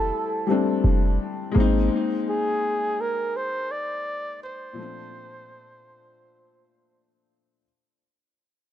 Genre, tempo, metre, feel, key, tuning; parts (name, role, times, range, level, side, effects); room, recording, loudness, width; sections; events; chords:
contemporary R&B; 84 BPM; 4/4; straight; A4 = 441 Hz
breathy flugelhorn; melody; 0.0-6.9 s; Ab4 to D5; -28 LUFS; right 1 dB; tape echo
warm grand piano; accompaniment; 0.0-7.7 s; Bb2 to E4; -25 LUFS; left 4 dB; tape echo
warm 808-style bass; bass; 0.0-1.9 s; F1 to Ab1; -20 LUFS; right 1 dB
little or no reverb; echo-heavy mix; -22 LUFS; side -11 dB against mid
0.0-7.6 A section
fade-out 0.0-7.6
0.0 Fmaj9; 1.6 Abadd9; 4.8 Bbmaj9